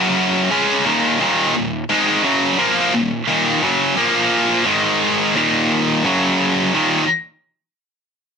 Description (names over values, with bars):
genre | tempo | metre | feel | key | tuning
metal | 87 BPM | 4/4 | straight | Eb minor | A4 = 440 Hz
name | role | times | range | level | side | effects
heavy high-gain guitar | solo | 0.0-7.0 s | Eb2 to Db4 | -14 LUFS | equal | distortion
room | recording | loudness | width
light reverb | lossy compression artefacts | -14 LUFS | side -6 dB against mid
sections
0.0-6.7 A section; 6.7-8.4 B section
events
none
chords
0.0 Gb5; 0.5 Ebm; 4.0 Bb5; 4.7 Ab5; 5.4 Eb5; 6.1 Gb5; 6.7 Eb5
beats
0.51 | 1.21 1.90 2.59 3.28 | 3.98 4.67 5.36 6.05 | 6.74